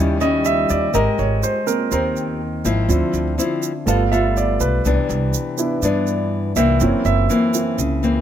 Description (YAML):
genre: bossa nova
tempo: 123 BPM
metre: 4/4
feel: straight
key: unclear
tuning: A4 = 443 Hz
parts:
  - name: nylon-string guitar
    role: accompaniment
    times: 0.0-8.2 s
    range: Gb2 to Bb4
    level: -21 LUFS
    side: left 4 dB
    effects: none
  - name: warm grand piano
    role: accompaniment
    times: 0.0-8.2 s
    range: F3 to F5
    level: -21 LUFS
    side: right 4 dB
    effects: none
  - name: upright bass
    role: bass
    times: 0.0-8.2 s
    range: Gb1 to G2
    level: -21 LUFS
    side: right 1 dB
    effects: none
  - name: egg shaker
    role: percussion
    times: 0.2-8.2 s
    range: none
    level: -28 LUFS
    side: right 11 dB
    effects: none
room: little or no reverb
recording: none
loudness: -16 LUFS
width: side -10 dB against mid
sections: 0.9-8.2 A section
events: grand piano solo 0.0-8.2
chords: 0.0 Eb7b9; 0.9 Abmaj9; 2.9 Dm9; 3.9 G9; 4.9 Cmaj9; 6.8 Gb7#11